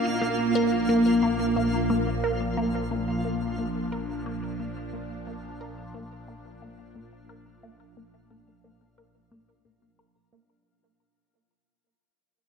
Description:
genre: ambient, sequencer-driven space music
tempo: 89 BPM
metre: 4/4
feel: straight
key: unclear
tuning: A4 = 440 Hz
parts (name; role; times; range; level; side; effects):
- phased analog pad; sustained chords; 0.0-10.7 s; Bb2 to D4; -27 LUFS; right 1 dB; phaser, chorus
- vibraphone with hard mallets; arpeggios; 0.0-10.7 s; D4 to Bb5; -38 LUFS; left 1 dB; auto-pan, tape echo, shimmer reverb
- resonant blip pluck; riff; 0.0-10.5 s; Bb3 to Bb4; -30 LUFS; left 2 dB; phaser, tape echo, shimmer reverb
- warm sub bass; bass; 0.0-10.6 s; Bb1; -41 LUFS; equal; none
- twinkling granular texture; texture; 0.0-10.7 s; F4 to F5; -34 LUFS; equal; built-in reverb, shimmer reverb
room: wet plate reverb, RT60 2.4 s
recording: dark, warm production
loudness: -24 LUFS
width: side -6 dB against mid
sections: 0.0-10.7 A section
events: fade-out on vibraphone 0.0-10.7; fade-out on sub bass 0.0-10.7; fade-out 0.0-10.7; filter sweep on synth arpeggio sound 0.0-10.7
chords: 0.0 Bb

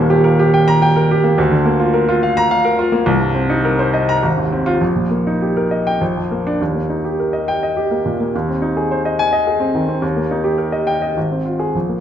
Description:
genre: classical, virtuoso piano study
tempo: 105 BPM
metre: 3/4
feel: rubato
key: Eb major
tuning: A4 = 444 Hz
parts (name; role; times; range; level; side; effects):
- warm grand piano; solo; 0.0-12.0 s; Eb1 to Bb5; -14 LUFS; equal; none
room: wet recital hall reverb, RT60 1.6 s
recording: none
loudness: -14 LUFS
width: side -9 dB against mid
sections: 0.0-6.6 A section; 6.6-12.0 B section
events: none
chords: 0.0 Eb; 1.4 Bb/D; 3.1 Cm7; 4.2 Ab6; 4.8 Eb/Bb; 6.0 Bb; 6.6 Eb; 8.3 Ab/Eb; 10.0 Eb; 11.2 Fm/Ab

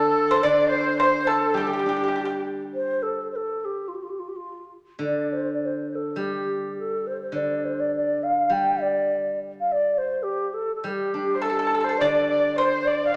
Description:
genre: chinese traditional, Chinese chamber ensemble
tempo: 104 BPM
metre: 2/4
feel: rubato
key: G shang mode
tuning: A4 = 440 Hz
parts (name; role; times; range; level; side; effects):
- mellow xiao; melody; 0.0-13.2 s; F4 to G5; -27 LUFS; equal; none
- dark erhu; second line; 0.0-2.4, 11.3-13.2 s; G4 to F5; -28 LUFS; equal; none
- pipa; second line; 0.0-2.3, 11.4-13.1 s; G4 to D5; -27 LUFS; equal; none
- steel-string zither; accompaniment; 0.0-13.2 s; D3 to D4; -33 LUFS; equal; none
room: wet recital hall reverb, RT60 1.6 s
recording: none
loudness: -24 LUFS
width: mono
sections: 0.0-2.7 A section; 2.7-12.0 B section; 12.0-13.2 A section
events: none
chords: none

